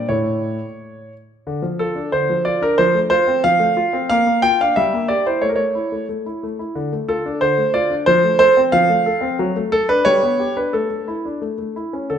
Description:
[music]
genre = classical-period piano sonatina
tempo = 90 BPM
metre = 2/4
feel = straight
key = D minor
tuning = A4 = 440 Hz
[part]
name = warm grand piano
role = solo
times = 0.0-12.2 s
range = A2 to G5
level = -16 LUFS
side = equal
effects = none
[sound]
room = wet recital hall reverb, RT60 1.7 s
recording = minimal, uncompressed stereo recording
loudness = -15 LUFS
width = side -8 dB against mid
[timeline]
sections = 0.0-1.5 A section; 1.5-12.1 B section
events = none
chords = 0.1 A; 1.5 Dm; 2.8 F; 4.1 Bb; 4.8 Edim/G; 5.4 A5; 6.8 Dm; 8.1 F; 9.4 D/F#; 10.0 G; 10.7 Asus4; 11.4 A

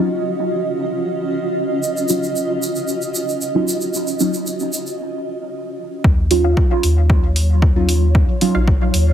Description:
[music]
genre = dub techno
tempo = 114 BPM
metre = 4/4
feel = straight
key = Eb minor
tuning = A4 = 441 Hz
[part]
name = granular cloud pad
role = sustained chords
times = 0.0-9.1 s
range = Gb3 to Eb5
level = -22 LUFS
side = right 1 dB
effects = built-in reverb, sidechain pumping
[part]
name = deep mellow chord stab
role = stabs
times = 0.0-8.6 s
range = Gb3 to F4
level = -20 LUFS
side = right 2 dB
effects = chorus, phaser, sidechain pumping, dub echo
[part]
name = egg shaker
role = percussion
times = 1.8-5.0 s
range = none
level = -26 LUFS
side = right 2 dB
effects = none
[part]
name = soft dub sub bass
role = bass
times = 6.0-9.1 s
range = Bb1 to Eb2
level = -16 LUFS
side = equal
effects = sidechain pumping
[part]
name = electronic kick drum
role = drums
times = 6.0-8.8 s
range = none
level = -15 LUFS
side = equal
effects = overdrive
[part]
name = electronic hi-hat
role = drums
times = 6.3-9.0 s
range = none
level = -23 LUFS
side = equal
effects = overdrive, low-pass filter on snare, low-pass filter on hats, low-pass filter on room
[part]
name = filtered dub chord stab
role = riff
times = 6.4-8.6 s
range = Eb4 to F5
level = -29 LUFS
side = left 2 dB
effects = phaser, sidechain pumping, dub echo
[sound]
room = moderate echo chamber reverb, RT60 1.3 s, digital ambience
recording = heavily compressed radio sound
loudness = -16 LUFS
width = side -10 dB against mid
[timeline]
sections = 0.0-6.0 A section; 6.0-9.1 B section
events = break 5.0-6.0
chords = 0.0 Ebm9

